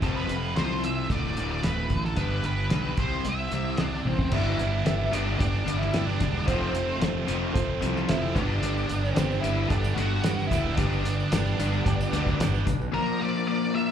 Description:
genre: classic rock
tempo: 112 BPM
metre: 4/4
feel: straight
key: unclear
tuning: A4 = 441 Hz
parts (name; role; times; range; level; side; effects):
- octave-fuzz lead guitar; melody; 0.0-13.9 s; C4 to E5; -32 LUFS; equal; distortion, slapback echo, tape echo
- cranked stack guitar; riff; 0.0-12.7 s; D2 to C5; -33 LUFS; right 12 dB; overdrive, slapback echo
- overdriven electric guitar; riff; 0.0-13.9 s; D2 to C4; -31 LUFS; left 9 dB; slapback echo
- fuzz fingered electric bass; bass; 0.0-12.9 s; D1 to G2; -28 LUFS; right 1 dB; overdrive
- cloth-damped thuddy drum kit; drums; 0.0-12.8 s; crash cymbal, hi-hat, kick drum, snare drum, toms; -29 LUFS; equal; none
- barky reed electric piano; accompaniment; 4.3-12.8 s; D4 to E5; -37 LUFS; right 2 dB; overdrive, slapback echo
- tonewheel organ; sustained chords; 4.3-13.9 s; F3 to D5; -38 LUFS; right 3 dB; none
- tambourine; percussion; 8.8-12.9 s; none; -48 LUFS; left 3 dB; none
room: studio ambience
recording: live gig heard through the venue's PA, club reverb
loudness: -24 LUFS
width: side -9 dB against mid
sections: 0.0-4.3 A section; 4.3-12.9 B section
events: drum fill 4.1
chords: 0.0 F; 1.1 D; 2.2 G; 3.0 C; 4.3 G; 6.5 F; 8.4 G; 12.9 Bb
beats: | 0.02 0.56 1.10 1.64 | 2.18 2.72 3.26 3.80 | 4.33 4.87 5.41 5.95 | 6.49 7.02 7.56 8.10 | 8.64 9.18 9.71 10.25 | 10.79 11.33 11.87 12.40 | 12.94 13.48

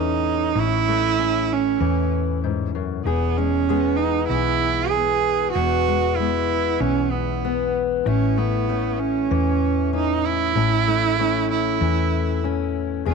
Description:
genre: acoustic folk duo or small band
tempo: 96 BPM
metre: 4/4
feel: straight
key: unclear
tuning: A4 = 440 Hz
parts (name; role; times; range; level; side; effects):
- rich cello; melody; 0.0-13.1 s; B3 to G#4; -22 LUFS; right 11 dB; none
- fingerpicked steel-string acoustic guitar; accompaniment; 0.0-13.1 s; E2 to G#4; -24 LUFS; left 13 dB; none
- hollow-body short-scale fingered electric bass; bass; 0.0-13.1 s; E1 to E2; -25 LUFS; left 1 dB; none
room: light reverb, small room ambience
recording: 1960s-style stereo with parts hard left and right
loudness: -19 LUFS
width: side -5 dB against mid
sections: 0.0-13.1 A section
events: none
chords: 0.0 A; 3.1 E; 8.1 A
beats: | 0.56 1.18 1.81 2.43 | 3.06 3.68 4.31 4.93 | 5.56 6.18 6.81 7.43 | 8.06 8.69 9.31 9.94 | 10.56 11.19 11.82 12.44 | 13.07

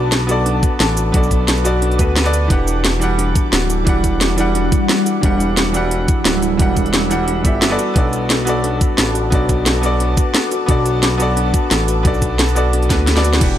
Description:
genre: liquid drum and bass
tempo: 176 BPM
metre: 4/4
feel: swing 54% on 16ths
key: unclear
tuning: A4 = 439 Hz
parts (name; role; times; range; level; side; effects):
- bright concert grand piano; accompaniment; 0.0-13.6 s; E3 to F#5; -21 LUFS; right 1 dB; dub echo
- ethereal airy pad; sustained chords; 0.0-13.6 s; G3 to E6; -24 LUFS; equal; ensemble chorus, built-in reverb, phaser
- kalimba; arpeggios; 0.0-13.5 s; D4 to D5; -23 LUFS; left 2 dB; dub echo
- smooth synth bass; bass; 0.0-13.6 s; D1 to D2; -19 LUFS; equal; none
- drum and bass drum kit; drums; 0.1-13.5 s; crash cymbal, hi-hat, shaker, snare drum; -18 LUFS; equal; none
- electronic kick drum; drums; 0.6-13.5 s; none; -16 LUFS; equal; none
room: light reverb, digital ambience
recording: none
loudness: -13 LUFS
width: side -11 dB against mid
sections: 0.0-13.4 A section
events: drop 0.0-13.4; drum fill 12.9-13.4; kick drops out 13.1-13.4; band accent 13.3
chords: 0.0 Bm7; 2.5 Em9; 7.8 Bm7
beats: 0.12 0.46 0.80 | 1.14 1.48 1.82 2.16 | 2.50 2.85 3.19 3.53 | 3.87 4.21 4.55 4.89 | 5.23 5.57 5.91 6.25 | 6.59 6.94 7.28 7.62 | 7.96 8.30 8.64 8.98 | 9.32 9.66 10.00 10.35 | 10.69 11.03 11.37 11.71 | 12.05 12.39 12.73 13.07 | 13.41

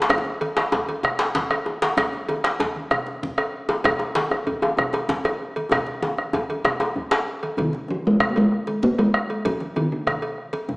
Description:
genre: west african traditional, West African drum ensemble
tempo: 128 BPM (dotted quarters)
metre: 12/8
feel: straight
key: unclear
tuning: A4 = 440 Hz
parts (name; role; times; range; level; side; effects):
- djembe; percussion; 0.0-7.3 s; none; -24 LUFS; left 1 dB; none
- bombo; percussion; 0.1-10.8 s; none; -25 LUFS; equal; none
- congas; percussion; 0.1-10.8 s; none; -37 LUFS; right 1 dB; none
- cowbell; percussion; 0.1-10.7 s; none; -29 LUFS; equal; none
- djembe; percussion; 0.1-10.8 s; none; -33 LUFS; left 1 dB; none
- talking drum; melody; 7.6-10.5 s; Db3 to Bb3; -21 LUFS; equal; none
room: wet recital hall reverb, RT60 1.6 s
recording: small speaker sound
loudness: -20 LUFS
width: side -26 dB against mid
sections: 0.0-7.6 A section; 7.6-10.8 B section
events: drum fill 5.7-7.6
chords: none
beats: | 0.10 0.57 1.04 1.51 | 1.97 2.44 2.91 3.38 | 3.85 4.31 4.78 5.25 | 5.71 6.18 6.65 7.12 | 7.58 8.05 8.51 8.98 | 9.45 9.91 10.38

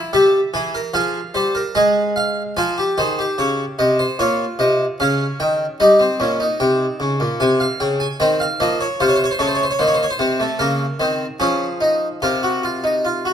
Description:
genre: classical, baroque-style 3-part fugue for harpsichord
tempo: 74 BPM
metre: 4/4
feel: straight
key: F minor, Bb minor from 9.0 s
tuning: A4 = 439 Hz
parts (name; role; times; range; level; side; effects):
- harpsichord; solo; 0.0-13.3 s; Bb2 to Ab5; -16 LUFS; equal; none
room: moderate recital hall reverb, RT60 1.8 s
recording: close, detailed microphones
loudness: -16 LUFS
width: side -9 dB against mid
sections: 0.0-2.6 A section; 2.6-13.3 B section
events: none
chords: 0.0 Edim; 0.9 Fm; 4.2 Bbm; 5.8 Eb; 7.4 Abmaj7/C; 9.0 F7/C; 10.6 Bbm/Db; 12.2 Fsus4/C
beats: 0.13 0.94 1.75 | 2.56 3.38 4.18 4.99 | 5.79 6.59 7.39 8.19 | 8.99 9.79 10.60 11.40 | 12.22 13.05

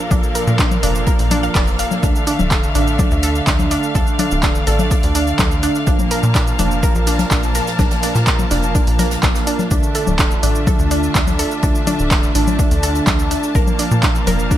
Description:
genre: melodic techno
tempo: 125 BPM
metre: 4/4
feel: straight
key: D minor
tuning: A4 = 440 Hz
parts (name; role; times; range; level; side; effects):
- rich studio string section; sustained chords; 0.0-14.6 s; D4 to A5; -24 LUFS; left 2 dB; sidechain pumping
- brassy analog pad; stabs; 0.0-14.6 s; Bb2 to D4; -22 LUFS; right 3 dB; chorus, sidechain pumping, digital delay
- wide unison pluck; arpeggios; 0.1-14.6 s; D4 to F5; -24 LUFS; equal; sidechain pumping, digital delay
- tight sequencer bass; bass; 0.1-14.6 s; D1 to Bb2; -20 LUFS; equal; sidechain pumping
- electronic kick drum; drums; 0.1-14.6 s; none; -18 LUFS; equal; none
- punchy analog drum machine; drums; 0.1-14.6 s; congas, handclaps, hi-hat, shaker; -21 LUFS; left 2 dB; gated reverb
- swinging big-band drum kit; drums; 0.1-14.6 s; hi-hat, snare drum; -33 LUFS; right 2 dB; none
room: light reverb, small room reverb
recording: bright 1980s-style digital production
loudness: -14 LUFS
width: side -12 dB against mid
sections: 0.0-14.6 A section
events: none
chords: 0.0 Bbmaj7; 2.0 Dmadd9; 5.9 Bbmaj7; 9.7 Dmadd9; 13.6 Bbmaj7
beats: | 0.11 0.59 1.07 1.55 | 2.03 2.51 2.99 3.47 | 3.95 4.43 4.91 5.39 | 5.87 6.35 6.83 7.31 | 7.79 8.27 8.75 9.23 | 9.71 10.19 10.67 11.15 | 11.63 12.11 12.59 13.07 | 13.55 14.03 14.51

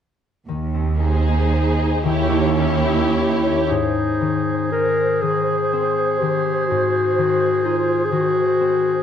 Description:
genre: classical, slow romantic movement for symphony orchestra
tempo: 34-42 BPM (dotted quarters)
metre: 6/8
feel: rubato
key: Ab major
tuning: A4 = 440 Hz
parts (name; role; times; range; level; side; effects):
- concert harp; arpeggios; 0.5-9.0 s; Ab2 to Eb5; -24 LUFS; left 6 dB; none
- rich symphonic cello section; bass; 0.5-3.5 s; Eb2; -23 LUFS; right 3 dB; none
- rich symphonic double bass section; bass; 0.5-3.5 s; Eb2; -22 LUFS; right 4 dB; none
- warm symphonic violin section; melody; 1.0-3.7 s; C5 to Db5; -28 LUFS; left 2 dB; none
- warm symphonic violin section; second line; 1.0-3.7 s; G4 to Ab4; -26 LUFS; equal; none
- dark symphonic viola section; accompaniment; 1.0-3.7 s; Eb4 to Fb4; -25 LUFS; right 2 dB; none
- mellow clarinet; second line; 3.1-9.0 s; Eb4 to Bb4; -20 LUFS; left 1 dB; none
- clear oboe; second line; 3.7-9.0 s; Ab4; -26 LUFS; right 2 dB; none
- large flute ensemble; second line; 3.7-9.0 s; C5; -25 LUFS; equal; none
room: moderate scoring stage reverb, RT60 1.5 s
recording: dark, warm production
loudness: -17 LUFS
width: side -8 dB against mid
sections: 0.5-3.7 A section; 3.7-9.0 B section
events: none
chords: 0.5 Ab/Eb; 2.0 Eb7b9; 3.7 Ab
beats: | 0.48 2.04 | 3.68 5.21 | 6.69 8.12

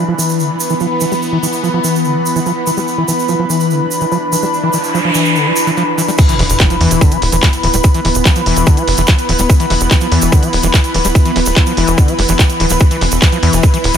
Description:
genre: psychedelic trance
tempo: 145 BPM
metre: 4/4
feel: straight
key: unclear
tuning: A4 = 440 Hz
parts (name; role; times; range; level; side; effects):
- evolving wavetable pad; sustained chords; 0.0-14.0 s; E3 to D4; -20 LUFS; right 1 dB; phaser, built-in reverb, sidechain pumping
- overdriven acid bass; riff; 0.0-14.0 s; D3 to G3; -18 LUFS; moving between left 5 dB and right 3 dB; distortion, auto-pan, sidechain pumping, dub echo
- airy breathy pad; texture; 0.0-14.0 s; E4 to B5; -18 LUFS; equal; chorus, sidechain pumping
- egg shaker; percussion; 0.2-14.0 s; none; -22 LUFS; right 5 dB; none
- noise sweep and impact; sound effects; 4.7-7.8 s; none; -19 LUFS; right 1 dB; none
- electronic kick drum; drums; 6.2-13.7 s; none; -10 LUFS; equal; none
- garage drum kit; drums; 6.2-14.0 s; crash cymbal, handclaps, hi-hat; -18 LUFS; equal; none
- tight sequencer bass; bass; 6.4-14.0 s; D1 to E2; -15 LUFS; equal; none
room: light reverb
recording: none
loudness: -10 LUFS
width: side -8 dB against mid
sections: 0.0-6.2 A section; 6.2-14.0 B section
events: noise sweep 4.7-6.2; drop 6.2-14.0; impact 6.2-7.8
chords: 0.0 E5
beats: 0.39 0.81 | 1.22 1.63 2.05 2.46 | 2.88 3.29 3.70 4.12 | 4.53 4.94 5.36 5.77 | 6.18 6.60 7.01 7.43 | 7.84 8.25 8.67 9.08 | 9.50 9.91 10.32 10.74 | 11.15 11.56 11.98 12.39 | 12.81 13.22 13.63

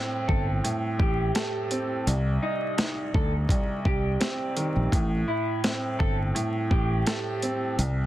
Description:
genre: hip hop, boom-bap hip-hop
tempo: 84 BPM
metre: 4/4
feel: swing 54% on 16ths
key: A minor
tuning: A4 = 442 Hz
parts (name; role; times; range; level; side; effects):
- warm upright piano; accompaniment; 0.0-8.1 s; C2 to A4; -29 LUFS; right 1 dB; cassette tape, high-pass filter, low-pass filter
- electric guitar at the edge of break-up; melody; 0.3-7.7 s; Eb4 to A4; -33 LUFS; right 1 dB; wide subtle chorus, high-pass filter, low-pass filter, tape echo
- fingered electric bass; bass; 0.3-8.1 s; G1 to D2; -26 LUFS; equal; none
- dusty soul sampler-style drum kit; drums; 0.3-8.0 s; hi-hat, kick drum, snare drum; -27 LUFS; equal; overdrive
room: little or no reverb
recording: dense, heavily limited modern master, vinyl crackle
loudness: -24 LUFS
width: side -14 dB against mid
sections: 0.0-8.1 A section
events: none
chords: 0.0 Am7; 2.1 Cm; 4.9 Am7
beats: 0.64 1.35 | 2.07 2.78 3.50 4.21 | 4.92 5.64 6.35 7.07 | 7.78

